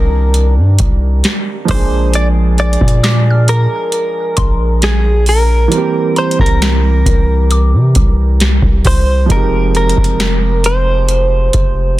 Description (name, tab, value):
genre	contemporary R&B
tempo	67 BPM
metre	4/4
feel	straight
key	C minor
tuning	A4 = 439 Hz
part	direct-recorded clean electric guitar	melody	0.0-12.0 s	Ab4 to D5	-17 LUFS	equal	tape echo
part	warm baby grand piano	accompaniment	0.0-12.0 s	Eb3 to Ab4	-20 LUFS	right 5 dB	none
part	long sustained 808-style bass	bass	0.0-12.0 s	F1 to C3	-12 LUFS	equal	none
part	mallet-like synth pluck	texture	0.0-9.7 s	Bb5 to F6	-28 LUFS	left 3 dB	chorus, tape echo
part	booming analog drum machine	drums	0.3-11.7 s	hi-hat, kick drum, snare drum	-14 LUFS	equal	none
room	digital ambience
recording	dense, heavily limited modern master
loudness	-10 LUFS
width	side -16 dB against mid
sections	0.0-12.0 A section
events	none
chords	0.0 Cm9; 1.7 Bb7; 5.7 C7; 9.3 Fm9